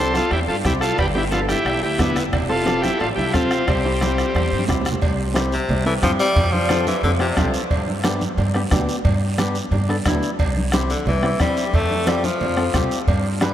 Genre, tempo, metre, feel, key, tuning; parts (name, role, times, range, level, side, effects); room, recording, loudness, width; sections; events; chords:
latin, cumbia; 179 BPM; 4/4; straight; C major; A4 = 440 Hz
combo organ; melody; 0.0-4.7 s; G3 to C5; -22 LUFS; equal
clean electric guitar; accompaniment; 0.0-13.5 s; B3 to B4; -25 LUFS; left 1 dB
upright bass; bass; 0.0-13.5 s; F1 to G2; -23 LUFS; equal
bombo; percussion; 0.1-13.5 s; -25 LUFS; equal
congas; percussion; 0.1-13.5 s; -28 LUFS; right 1 dB
guiro; percussion; 0.1-13.5 s; -34 LUFS; right 4 dB
cowbell and timbales; percussion; 0.3-13.5 s; -31 LUFS; right 5 dB
bright tenor saxophone; second line; 5.5-7.5, 10.9-12.9 s; C3 to A3; -24 LUFS; left 2 dB
wet cathedral reverb, RT60 5.7 s; in a vast, echoing space; -17 LUFS; side -11 dB against mid
0.0-5.0 A section; 5.0-13.5 B section
drum fill 4.4-5.0; tenor saxophone solo 5.0-13.5
0.0 C; 1.0 G; 2.3 F; 3.7 C; 6.4 F; 7.7 G; 10.4 C; 11.7 F